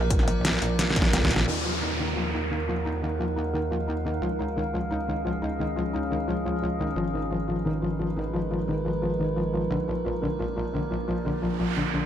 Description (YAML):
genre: dark technical drum and bass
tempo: 175 BPM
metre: 4/4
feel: straight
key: Eb minor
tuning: A4 = 441 Hz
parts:
  - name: metallic inharmonic drone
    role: sustained chords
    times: 0.0-12.1 s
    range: Ab3 to Gb5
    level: -31 LUFS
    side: right 2 dB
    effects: chorus, built-in reverb, sidechain pumping
  - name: pulsing pluck wobble bass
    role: bass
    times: 0.0-1.5 s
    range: Bb1 to Cb2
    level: -25 LUFS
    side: equal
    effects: chorus
  - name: dubstep drum kit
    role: drums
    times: 0.1-1.4 s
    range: hi-hat, snare drum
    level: -25 LUFS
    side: equal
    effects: low-pass filter on hats, low-pass filter on snare, low-pass filter on room
  - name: electronic kick drum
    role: drums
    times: 0.1-1.3 s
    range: none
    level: -25 LUFS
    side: equal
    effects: none
  - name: metallic wobble bass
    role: bass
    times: 0.3-12.1 s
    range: Ab1 to Eb2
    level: -30 LUFS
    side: equal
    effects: distortion, chorus, tube saturation
  - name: felt-muted upright piano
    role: arpeggios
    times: 1.5-12.0 s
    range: D3 to Eb4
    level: -30 LUFS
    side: left 2 dB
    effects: sidechain pumping, tape echo
  - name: downlifter and noise sweep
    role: sound effects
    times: 1.5-4.2, 11.3-12.1 s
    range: none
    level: -32 LUFS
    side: right 2 dB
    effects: none
room: light reverb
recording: none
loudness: -24 LUFS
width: side -10 dB against mid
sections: 0.0-1.5 A section; 1.5-12.1 B section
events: drop 0.0-1.5; drum fill 0.8-1.5; band accent 1.4; filter sweep on synth drone 1.5-12.1; noise sweep 11.3-12.1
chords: 0.0 Bb; 1.5 Ebm; 4.2 Dbadd9; 7.0 Abmadd9; 9.7 Bb